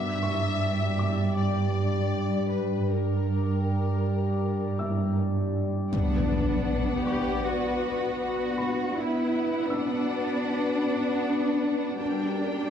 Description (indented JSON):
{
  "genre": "cinematic",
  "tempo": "79 BPM",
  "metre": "4/4",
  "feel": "straight",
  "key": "B harmonic minor",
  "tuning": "A4 = 440 Hz",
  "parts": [
    { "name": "warm symphonic violin section", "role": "melody", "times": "0.0-5.2 s", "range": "Bb4 to E5", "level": "-33 LUFS", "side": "left 5 dB", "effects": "none" },
    { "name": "analog drone", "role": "sustained chords", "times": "0.0-12.7 s", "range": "G3 to F#5", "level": "-31 LUFS", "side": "left 2 dB", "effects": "chorus" },
    { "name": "dark symphonic cello section", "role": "bass", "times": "0.0-12.7 s", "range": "G2 to G4", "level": "-28 LUFS", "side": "right 2 dB", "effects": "none" },
    { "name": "felt-muted upright piano", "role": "texture", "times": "0.0-12.0 s", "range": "A#4 to E6", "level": "-41 LUFS", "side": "left 2 dB", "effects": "tape echo" },
    { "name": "warm symphonic violin section", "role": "second line", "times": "5.9-12.7 s", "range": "Bb4 to G5", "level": "-36 LUFS", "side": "left 6 dB", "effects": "none" },
    { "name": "rich symphonic viola section", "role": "accompaniment", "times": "5.9-12.7 s", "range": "G3 to B3", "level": "-32 LUFS", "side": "equal", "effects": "none" },
    { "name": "impact", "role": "sound effects", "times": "5.9-9.0 s", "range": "none", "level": "-30 LUFS", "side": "left 1 dB", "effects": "none" }
  ],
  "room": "moderate scoring stage reverb, RT60 1.8 s",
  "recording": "dark, warm production",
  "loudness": "-24 LUFS",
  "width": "side -8 dB against mid",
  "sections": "0.0-5.9 A section; 5.9-12.7 B section",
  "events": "impact 5.9-9.0",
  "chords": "0.0 Gm; 5.9 Bm; 12.0 Gm",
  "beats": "0.61 1.37 2.13 | 2.89 3.65 4.41 5.17 | 5.93 6.68 7.45 8.20 | 8.96 9.72 10.48 11.24 | 12.00"
}